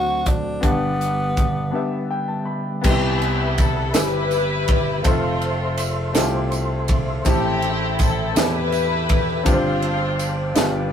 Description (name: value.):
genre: slow gospel.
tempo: 54 BPM (dotted quarters).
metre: 6/8.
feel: straight.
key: C major.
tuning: A4 = 440 Hz.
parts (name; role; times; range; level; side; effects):
growling tenor saxophone; melody; 0.0-2.1 s; B3 to F#4; -23 LUFS; left 1 dB; none.
clear grand piano; accompaniment; 0.0-10.9 s; G2 to B5; -25 LUFS; left 2 dB; none.
percussive tonewheel organ; sustained chords; 0.0-10.9 s; D3 to D6; -29 LUFS; equal; slow rotary speaker, chorus vibrato.
fingered electric bass; bass; 0.0-10.9 s; F1 to E2; -25 LUFS; right 1 dB; none.
crisp fusion drum kit; drums; 0.3-10.7 s; crash cymbal, hi-hat, kick drum, ride cymbal, snare drum; -22 LUFS; right 1 dB; none.
tambourine; percussion; 2.8-10.9 s; none; -34 LUFS; right 5 dB; none.
warm studio string section; melody; 2.9-10.6 s; A3 to B4; -24 LUFS; left 3 dB; none.
room: moderate studio reverb, RT60 0.6 s.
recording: rough rehearsal-room recording.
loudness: -18 LUFS.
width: side -8 dB against mid.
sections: 0.0-2.8 A section; 2.8-10.9 B section.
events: break 1.7-2.8; grand piano fill 1.7-2.8.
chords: 0.0 D7; 0.6 G; 2.8 Cmaj7; 5.1 Fmaj7; 7.3 Am7; 9.5 G7sus4.